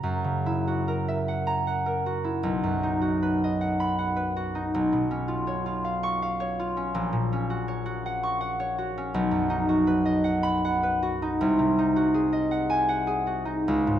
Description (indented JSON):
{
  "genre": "classical, solo harp piece",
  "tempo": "47-56 BPM (dotted quarters)",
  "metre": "6/8",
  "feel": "rubato",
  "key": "F# major",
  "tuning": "A4 = 440 Hz",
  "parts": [
    { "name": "concert harp", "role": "solo", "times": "0.0-14.0 s", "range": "A#1 to C#6", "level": "-24 LUFS", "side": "equal", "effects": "none" }
  ],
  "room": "moderate concert hall reverb, RT60 1.9 s",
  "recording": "dark, warm production",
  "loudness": "-24 LUFS",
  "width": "side -10 dB against mid",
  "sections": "0.0-14.0 A section",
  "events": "none",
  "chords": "0.0 F#7; 2.5 B; 4.7 C#7/B; 6.9 F#/A#; 9.1 B; 11.4 G#7/B#"
}